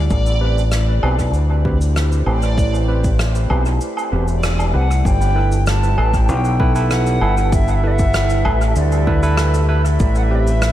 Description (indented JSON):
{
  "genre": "ambient dub",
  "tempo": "97 BPM",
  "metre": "4/4",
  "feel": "straight",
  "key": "unclear",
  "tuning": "A4 = 440 Hz",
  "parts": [
    { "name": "soft additive organ-like pad", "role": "sustained chords", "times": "0.0-10.7 s", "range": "G3 to C5", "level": "-27 LUFS", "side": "right 3 dB", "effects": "ensemble chorus, built-in reverb" },
    { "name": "growling fingered electric bass", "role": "bass", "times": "0.0-10.7 s", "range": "E1 to D2", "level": "-16 LUFS", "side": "equal", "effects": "overdrive" },
    { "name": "backwards swelling texture", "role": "texture", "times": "0.0-5.1 s", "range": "D5", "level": "-29 LUFS", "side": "right 1 dB", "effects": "built-in reverb" },
    { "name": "cabasa, rim click and woodblock", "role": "drums", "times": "0.1-10.7 s", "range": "none", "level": "-25 LUFS", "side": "equal", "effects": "dub echo" },
    { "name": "electronic kick drum", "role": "drums", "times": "0.1-10.1 s", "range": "none", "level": "-19 LUFS", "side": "equal", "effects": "overdrive" },
    { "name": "barky tine electric piano", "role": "stabs", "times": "0.4-10.5 s", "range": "C4 to B4", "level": "-25 LUFS", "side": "right 3 dB", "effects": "dub echo" },
    { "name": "bright wooden flute", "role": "melody", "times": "4.7-10.7 s", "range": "D5 to A5", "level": "-23 LUFS", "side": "left 1 dB", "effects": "dub echo" }
  ],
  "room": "light reverb, studio ambience",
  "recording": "none",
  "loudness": "-14 LUFS",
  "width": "side -13 dB against mid",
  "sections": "0.0-5.1 A section; 5.1-10.7 B section",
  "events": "kick drops out 3.8-5.1; band accent 4.4-4.7",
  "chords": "0.1 Am7; 5.1 G6; 10.0 Am7"
}